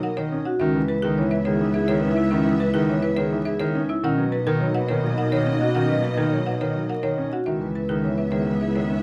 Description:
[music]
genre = classical, minimalist pattern music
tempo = 105 BPM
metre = 3/4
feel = straight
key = unclear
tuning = A4 = 437 Hz
[part]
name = folk marimba with hard mallets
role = melody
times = 0.0-8.9 s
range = G#4 to F#5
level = -34 LUFS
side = equal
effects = none
[part]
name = dark French horn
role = second line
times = 0.0-9.0 s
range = D#4 to E4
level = -33 LUFS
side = equal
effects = none
[part]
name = warm concert grand piano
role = accompaniment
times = 0.0-9.0 s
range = D#3 to C#4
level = -29 LUFS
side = equal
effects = none
[part]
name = rich studio string section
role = sustained chords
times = 0.0-9.0 s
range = A#3 to E5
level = -34 LUFS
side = equal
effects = none
[part]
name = vibraphone with medium mallets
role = arpeggios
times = 0.0-9.0 s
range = C#4 to C#5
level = -29 LUFS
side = equal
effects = none
[part]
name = dark cello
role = bass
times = 0.0-9.0 s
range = C#2 to B2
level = -28 LUFS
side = equal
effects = none
[sound]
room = moderate large studio reverb, RT60 1.0 s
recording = dark, warm production, vinyl crackle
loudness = -23 LUFS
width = mono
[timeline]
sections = 0.0-9.0 A section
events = none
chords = 0.0 Bmaj7; 0.6 C#m7; 4.0 Bmaj7; 7.5 C#m7

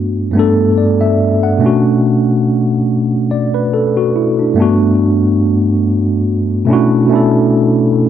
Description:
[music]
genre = hip hop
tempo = 71 BPM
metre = 4/4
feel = swing 55% on 16ths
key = B minor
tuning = A4 = 440 Hz
[part]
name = tine electric piano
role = solo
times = 0.0-8.1 s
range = G2 to F#5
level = -10 LUFS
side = equal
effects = medium stereo tremolo, cassette tape
[sound]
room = wet spring reverb, RT60 1.3 s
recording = dark, warm production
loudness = -10 LUFS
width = side -10 dB against mid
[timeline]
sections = 0.0-8.1 A section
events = none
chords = 0.0 Gmaj9; 1.6 Bm9; 4.6 Gmaj9; 6.7 Bm11

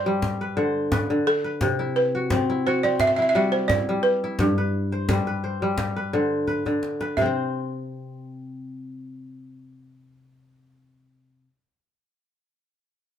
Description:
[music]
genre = west african traditional, West African string and xylophone music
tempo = 86 BPM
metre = 4/4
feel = straight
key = C lydian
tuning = A4 = 440 Hz
[part]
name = balafon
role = melody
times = 0.0-11.4 s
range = A4 to E5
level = -22 LUFS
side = right 2 dB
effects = none
[part]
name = kora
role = arpeggios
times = 0.0-11.5 s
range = G2 to C5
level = -24 LUFS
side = left 1 dB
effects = none
[part]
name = djembe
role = percussion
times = 0.2-7.5 s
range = none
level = -27 LUFS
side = left 1 dB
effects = none
[sound]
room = light reverb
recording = band playing live in one room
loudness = -21 LUFS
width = side -9 dB against mid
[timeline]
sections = 0.0-7.2 A section; 7.2-9.9 B section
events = drum fill 6.5-7.2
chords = 0.0 G; 1.6 C; 4.4 G; 7.2 C

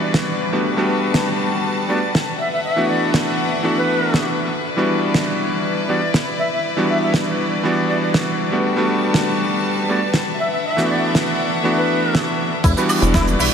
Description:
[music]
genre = nu-disco, nu disco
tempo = 120 BPM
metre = 4/4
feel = swing 53% on 16ths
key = E minor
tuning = A4 = 445 Hz
[part]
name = jazz flute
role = melody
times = 0.0-12.3 s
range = B4 to E5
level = -25 LUFS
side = equal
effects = analog delay
[part]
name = bright electric grand piano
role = accompaniment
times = 0.0-13.5 s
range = E3 to F#4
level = -20 LUFS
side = equal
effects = sidechain pumping, analog delay
[part]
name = clear studio violin section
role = sustained chords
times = 0.0-13.5 s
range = G3 to A5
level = -24 LUFS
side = left 3 dB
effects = sidechain pumping
[part]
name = damped 70s drum kit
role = drums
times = 0.1-13.5 s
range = crash cymbal, hi-hat, shaker, snare drum, woodblock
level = -23 LUFS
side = right 1 dB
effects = studio reverb
[part]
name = direct-recorded clean electric guitar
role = riff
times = 12.6-13.4 s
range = E4 to B4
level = -23 LUFS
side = left 1 dB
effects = ensemble chorus, analog delay
[part]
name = chorused synth bass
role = bass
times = 12.6-13.5 s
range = E1 to B1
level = -18 LUFS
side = equal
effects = tube saturation
[part]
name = electronic kick drum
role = drums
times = 12.6-13.2 s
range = none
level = -17 LUFS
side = equal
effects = studio reverb
[sound]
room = wet church reverb, RT60 4.0 s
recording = dreamy mix soaked in reverb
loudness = -16 LUFS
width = side -7 dB against mid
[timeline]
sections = 0.0-12.6 A section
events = none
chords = 0.0 Em7; 0.6 Gmaj9; 2.4 D69; 4.6 Em7; 8.6 Gmaj9; 10.4 D69; 12.6 Em7

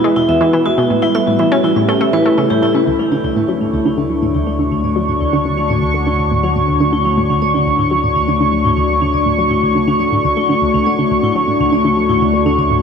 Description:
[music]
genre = ambient, sequencer-driven space music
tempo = 122 BPM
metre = 4/4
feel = straight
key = D major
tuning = A4 = 439 Hz
[part]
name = sweeping resonant pad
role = sustained chords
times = 0.0-12.8 s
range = G3 to C#6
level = -14 LUFS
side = left 1 dB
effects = chorus
[part]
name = analog pluck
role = riff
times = 0.0-12.8 s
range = D2 to E4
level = -18 LUFS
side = right 1 dB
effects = chorus, tape echo
[part]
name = bubbling stepped-filter texture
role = texture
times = 0.1-2.9 s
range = B4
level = -32 LUFS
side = right 2 dB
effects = none
[part]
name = vibraphone with hard mallets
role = arpeggios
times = 0.2-12.7 s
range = D4 to E5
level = -22 LUFS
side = equal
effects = auto-pan, tape echo
[part]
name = fat analog bass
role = bass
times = 2.9-12.8 s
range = D2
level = -22 LUFS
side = equal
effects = none
[sound]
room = wet cathedral reverb, RT60 6.7 s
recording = in a vast, echoing space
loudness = -12 LUFS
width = side -6 dB against mid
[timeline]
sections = 0.0-2.9 A section; 2.9-12.8 B section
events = fade-in on vibraphone 2.9-12.8; filter sweep on synth arpeggio sound 2.9-12.8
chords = 0.0 E; 0.9 A7; 2.9 Dmaj7

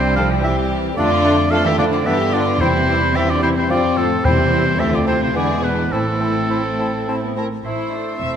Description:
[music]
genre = quick classical-period movement for symphony orchestra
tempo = 103-112 BPM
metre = 3/4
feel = rubato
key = A minor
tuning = A4 = 440 Hz
[part]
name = bright clarinet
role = second line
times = 0.0-8.4 s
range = C4 to F4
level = -29 LUFS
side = equal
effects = none
[part]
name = clear oboe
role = second line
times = 0.0-8.4 s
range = A4 to C6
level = -22 LUFS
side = right 1 dB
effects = none
[part]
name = small flute group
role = second line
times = 0.0-8.4 s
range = F5 to E6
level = -31 LUFS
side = left 4 dB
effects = none
[part]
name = warm studio violin section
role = second line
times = 0.0-8.3 s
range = B3 to E5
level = -26 LUFS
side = left 2 dB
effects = none
[part]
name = clear bassoon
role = accompaniment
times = 0.0-8.4 s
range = G3 to C4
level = -28 LUFS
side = right 2 dB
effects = none
[part]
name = dark studio viola section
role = accompaniment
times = 0.0-8.4 s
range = C3 to A4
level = -25 LUFS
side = right 3 dB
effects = none
[part]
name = warm French horn section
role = sustained chords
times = 0.0-8.4 s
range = F3 to E4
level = -24 LUFS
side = left 4 dB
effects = none
[part]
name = dark studio double bass section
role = bass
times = 0.0-8.4 s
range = E1 to G2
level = -25 LUFS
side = right 3 dB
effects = none
[part]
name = warm symphonic cello section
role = bass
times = 0.0-8.4 s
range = A2 to E4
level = -25 LUFS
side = right 3 dB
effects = none
[part]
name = warm studio violin section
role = melody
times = 0.2-8.4 s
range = C4 to C5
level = -26 LUFS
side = left 6 dB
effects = none
[part]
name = timpani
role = percussion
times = 2.6-4.8 s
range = E2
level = -24 LUFS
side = equal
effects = none
[sound]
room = moderate concert hall reverb, RT60 2.0 s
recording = none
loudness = -15 LUFS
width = side -8 dB against mid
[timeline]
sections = 0.0-7.7 A section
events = none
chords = 0.0 C; 1.0 Dm/F; 2.1 G; 2.6 C/E; 3.7 F; 4.2 C/E; 4.8 Dm7; 5.3 E7; 5.9 Am

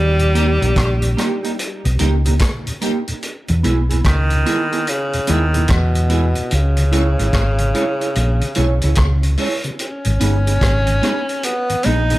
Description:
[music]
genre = roots reggae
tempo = 73 BPM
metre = 4/4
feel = swing 63% on 16ths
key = G# harmonic minor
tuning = A4 = 441 Hz
[part]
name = breathy tenor saxophone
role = melody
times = 0.0-12.2 s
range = B2 to D#4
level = -21 LUFS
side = equal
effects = tape echo, plate reverb
[part]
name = hollow-body short-scale fingered electric bass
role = bass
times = 0.0-12.2 s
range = G1 to E2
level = -16 LUFS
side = equal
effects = none
[part]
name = tonewheel organ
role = accompaniment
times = 0.2-12.2 s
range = D#2 to E4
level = -25 LUFS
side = left 2 dB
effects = chorus vibrato, slow rotary speaker
[part]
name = vintage drum kit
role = drums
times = 0.2-12.2 s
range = hi-hat, kick drum, rim click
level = -22 LUFS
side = equal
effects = slapback echo
[part]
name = mellow electric guitar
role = accompaniment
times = 0.3-12.2 s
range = A#3 to C#5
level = -24 LUFS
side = right 4 dB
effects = tape echo, plate reverb
[sound]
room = light reverb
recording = none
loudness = -15 LUFS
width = side -17 dB against mid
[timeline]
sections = 0.0-9.8 A section; 9.8-12.2 B section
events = none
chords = 0.0 D#; 3.2 E; 6.5 C#m; 9.8 G#m

